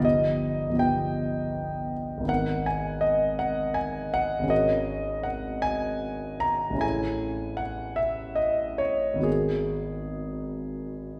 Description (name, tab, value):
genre	classical, impressionist solo piano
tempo	66-82 BPM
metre	3/4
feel	rubato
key	G# minor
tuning	A4 = 440 Hz
part	warm concert grand piano	solo	0.0-11.2 s	G1 to A#5	-27 LUFS	equal	none
room	wet recital hall reverb, RT60 1.5 s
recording	heard from further back in the room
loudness	-28 LUFS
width	mono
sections	0.0-11.2 A section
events	none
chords	0.0 Gaug7; 2.3 G#madd9; 4.5 F#69/G#; 6.8 Amaj7; 9.3 G#m9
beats	| 0.04 0.80 1.55 | 2.29 3.02 3.76 | 4.51 5.26 6.03 | 6.83 7.61 8.40 | 9.26 10.16 11.05